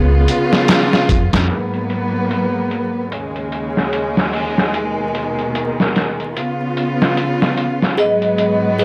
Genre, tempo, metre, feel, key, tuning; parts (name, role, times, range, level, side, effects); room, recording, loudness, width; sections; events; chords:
trip hop; 74 BPM; 4/4; swing 59% on 16ths; G# dorian; A4 = 442 Hz
vibraphone with medium mallets; melody; 0.0-1.1, 8.0-8.8 s; G#4 to D#5; -25 LUFS; equal; dub echo
rich chamber string section; sustained chords; 0.0-8.8 s; D#2 to E#4; -21 LUFS; equal
upright bass; bass; 0.0-1.5 s; C#2 to E#2; -17 LUFS; equal; transformer saturation
trip hop sampler-style drum kit; drums; 0.3-8.8 s; hi-hat, kick drum, snare drum; -20 LUFS; equal; low-pass filter on hats, low-pass filter on kick, low-pass filter on snare, low-pass filter on room
music box; arpeggios; 8.0-8.8 s; G#4; -21 LUFS; equal
light reverb, small room ambience; dry, gritty hardware recording, transformer saturation, vinyl crackle; -17 LUFS; mono
0.0-1.5 A section; 1.5-8.8 B section
0.0 C#7; 1.5 G#m9; 3.1 D#7sus4; 4.7 B6/D#; 6.4 C#7; 8.0 G#m7